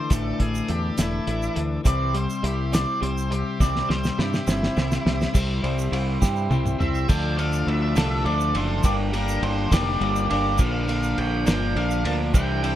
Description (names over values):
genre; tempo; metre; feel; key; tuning
indie rock; 69 BPM (dotted quarters); 6/8; straight; unclear; A4 = 444 Hz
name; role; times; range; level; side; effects
octave-fuzz lead guitar; melody; 0.0-12.8 s; E4 to A5; -29 LUFS; equal; distortion, slapback echo
overdriven combo organ; sustained chords; 0.0-12.8 s; E4 to D6; -38 LUFS; left 1 dB; none
electric guitar through a small old amp; riff; 0.0-12.8 s; E3 to A4; -31 LUFS; right 8 dB; wide subtle chorus, slapback echo
twelve-string electric guitar; riff; 0.0-12.8 s; G2 to E4; -28 LUFS; left 6 dB; none
growling fingered electric bass; bass; 0.1-12.8 s; E1 to G2; -26 LUFS; equal; overdrive
cloth-damped thuddy drum kit; drums; 0.1-12.8 s; crash cymbal, hi-hat, kick drum, ride cymbal, snare drum, toms; -25 LUFS; equal; none
egg shaker; percussion; 0.1-12.7 s; none; -39 LUFS; right 7 dB; none
soft synth bell; second line; 5.3-7.1 s; C5 to G5; -38 LUFS; left 3 dB; chorus, phaser
room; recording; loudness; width
light reverb; dark, warm production; -21 LUFS; side -12 dB against mid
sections
0.0-5.3 A section; 5.3-7.1 B section; 7.1-12.8 C section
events
lead electric guitar solo 0.0-5.3; drum fill 3.6-5.3, 6.2-7.1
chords
0.0 Asus4; 1.9 C; 7.1 Dm; 8.8 Gm; 10.6 Bb